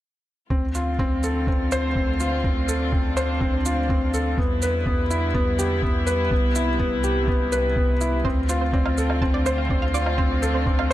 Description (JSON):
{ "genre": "piano and strings electronica", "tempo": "124 BPM", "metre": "4/4", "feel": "straight", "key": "D dorian", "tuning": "A4 = 441 Hz", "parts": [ { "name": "rich chamber string section", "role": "sustained chords", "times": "0.5-10.9 s", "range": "C3 to F4", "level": "-30 LUFS", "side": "left 2 dB", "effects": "sidechain pumping" }, { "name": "felt-muted upright piano", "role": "riff", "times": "0.5-10.9 s", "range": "B3 to C5", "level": "-24 LUFS", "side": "left 1 dB", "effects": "tape echo" }, { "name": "round analog bass", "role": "bass", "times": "0.5-10.9 s", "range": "C2 to E2", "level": "-25 LUFS", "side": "equal", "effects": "sidechain pumping" }, { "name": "electronic kick drum", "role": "drums", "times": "0.5-10.8 s", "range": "none", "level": "-25 LUFS", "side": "equal", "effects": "none" }, { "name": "shaker and woodblock", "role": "drums", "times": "0.7-10.9 s", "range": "none", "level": "-33 LUFS", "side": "right 5 dB", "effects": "overdrive" }, { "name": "analog pluck", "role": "arpeggios", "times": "8.2-10.8 s", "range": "C5 to A5", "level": "-31 LUFS", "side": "right 5 dB", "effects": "chorus, sidechain pumping, tape echo" } ], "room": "light reverb, small room ambience", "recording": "none", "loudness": "-20 LUFS", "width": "side -14 dB against mid", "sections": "0.5-10.9 A section", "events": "none", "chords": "0.5 Dm7; 4.4 Em7; 6.3 Cmaj7; 8.2 Dm7" }